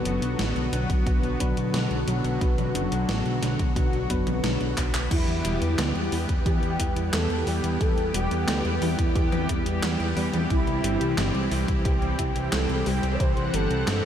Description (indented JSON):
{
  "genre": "synthwave",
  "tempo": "89 BPM",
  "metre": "4/4",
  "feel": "straight",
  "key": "E minor",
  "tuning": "A4 = 440 Hz",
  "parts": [
    { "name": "lush unison pad", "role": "sustained chords", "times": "0.0-14.1 s", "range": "D3 to F#5", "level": "-28 LUFS", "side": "equal", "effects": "chorus, sidechain pumping" },
    { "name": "tine electric piano", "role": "stabs", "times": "0.0-5.1 s", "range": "F#3 to B4", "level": "-35 LUFS", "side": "left 1 dB", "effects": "wide subtle chorus, ping-pong delay" },
    { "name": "fat analog bass", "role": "bass", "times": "0.0-14.0 s", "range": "E1 to E2", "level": "-28 LUFS", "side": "equal", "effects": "sidechain pumping" },
    { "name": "soft round pluck", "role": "arpeggios", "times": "0.1-14.1 s", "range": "D3 to B4", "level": "-36 LUFS", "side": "right 2 dB", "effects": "none" },
    { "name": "gated 80s digital drum machine", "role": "drums", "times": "0.1-14.0 s", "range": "crash cymbal, handclaps, hi-hat, snare drum, toms", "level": "-31 LUFS", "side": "equal", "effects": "gated reverb, gated reverb snare, overdrive" },
    { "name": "electronic kick drum", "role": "drums", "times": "0.9-13.3 s", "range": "none", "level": "-26 LUFS", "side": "equal", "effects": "none" },
    { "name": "expressive synth lead", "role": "melody", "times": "5.1-14.1 s", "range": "E4 to D5", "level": "-31 LUFS", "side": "equal", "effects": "ensemble chorus, ping-pong delay" }
  ],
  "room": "moderate huge ambient reverb, RT60 7.6 s",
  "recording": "dreamy mix soaked in reverb",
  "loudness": "-22 LUFS",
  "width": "side -9 dB against mid",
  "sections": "0.0-5.1 A section; 5.1-14.1 B section",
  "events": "drum fill 4.8-5.1",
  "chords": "0.0 Bm; 5.1 Em; 10.5 C"
}